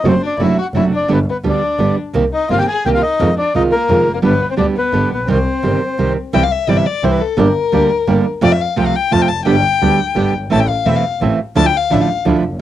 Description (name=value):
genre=tango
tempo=172 BPM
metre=3/4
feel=rubato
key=C minor, C major from 6.3 s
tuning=A4 = 441 Hz
part: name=bandoneon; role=melody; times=0.0-6.1 s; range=Bb4 to Ab5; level=-18 LUFS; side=left 1 dB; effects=cassette tape
part: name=warm violin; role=second line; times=0.0-12.2 s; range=Bb3 to A5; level=-19 LUFS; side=left 8 dB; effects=cassette tape
part: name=nylon-string guitar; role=accompaniment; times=0.0-12.4 s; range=C3 to G4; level=-15 LUFS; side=right 4 dB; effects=cassette tape
part: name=clear double bass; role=bass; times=0.0-12.6 s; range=E1 to F2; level=-20 LUFS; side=equal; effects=none
part: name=bandoneon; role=stabs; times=6.3-12.4 s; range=A3 to A4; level=-27 LUFS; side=right 6 dB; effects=cassette tape
room=light reverb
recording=home recording on cassette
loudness=-13 LUFS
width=side -12 dB against mid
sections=0.0-6.3 A section; 6.3-12.6 B section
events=violin solo 6.3-12.6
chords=0.0 D7/F#; 1.1 G; 2.1 Cm7; 3.2 Fm7; 4.2 G; 5.3 Cm; 6.3 C; 7.4 Gm; 8.4 F; 9.5 G; 10.5 Am; 11.6 Dmadd9